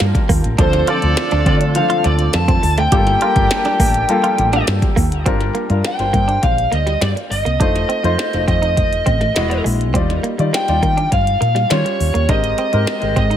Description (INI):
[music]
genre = polished 1980s jazz-funk pop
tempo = 102 BPM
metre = 4/4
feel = straight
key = G minor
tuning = A4 = 440 Hz
[part]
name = warm horn section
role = second line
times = 0.0-4.9 s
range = Bb3 to Bb4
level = -26 LUFS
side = right 3 dB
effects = digital delay
[part]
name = warm baby grand piano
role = accompaniment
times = 0.0-13.4 s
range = F3 to A5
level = -22 LUFS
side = left 3 dB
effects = wide subtle chorus
[part]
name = hollow soft pad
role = sustained chords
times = 0.0-5.2 s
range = D3 to A5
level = -27 LUFS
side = right 2 dB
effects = chorus
[part]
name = woody fretless electric bass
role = bass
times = 0.0-13.4 s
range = E1 to Eb3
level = -18 LUFS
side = equal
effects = analog chorus
[part]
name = minimal click drum kit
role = drums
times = 0.0-13.4 s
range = hi-hat, kick drum, snare drum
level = -19 LUFS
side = equal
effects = gated reverb
[part]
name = direct-recorded clean electric guitar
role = riff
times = 0.3-13.4 s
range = G3 to G4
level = -25 LUFS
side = right 5 dB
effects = lush chorus
[part]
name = bluesy overdriven lead guitar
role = melody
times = 0.6-13.4 s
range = C5 to A5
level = -19 LUFS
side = equal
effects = distortion, digital delay
[sound]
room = digital ambience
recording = none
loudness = -14 LUFS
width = side -10 dB against mid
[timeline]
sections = 0.0-5.3 A section; 5.3-13.4 B section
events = none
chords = 0.0 Gm9; 0.6 Dm7; 2.9 Gm9; 5.3 Gm7; 7.6 F7; 9.4 Emaj9; 9.9 Ebmaj9; 11.7 Eb9; 12.3 Abmaj9